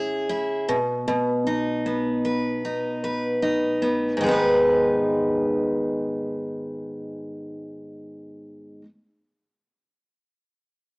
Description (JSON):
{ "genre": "pop", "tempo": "77 BPM", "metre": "4/4", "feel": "straight", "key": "G# minor", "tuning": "A4 = 436 Hz", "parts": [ { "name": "picked steel-string acoustic guitar", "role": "accompaniment", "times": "0.0-8.9 s", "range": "G#2 to B4", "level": "-22 LUFS", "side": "equal", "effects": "none" } ], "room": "wet stone room reverb, RT60 1.2 s", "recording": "band playing live in one room, small speaker sound", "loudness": "-21 LUFS", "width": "side -34 dB against mid", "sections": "0.0-4.2 A section; 4.2-7.3 B section", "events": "none", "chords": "0.0 C#m; 0.7 B; 4.2 G#m" }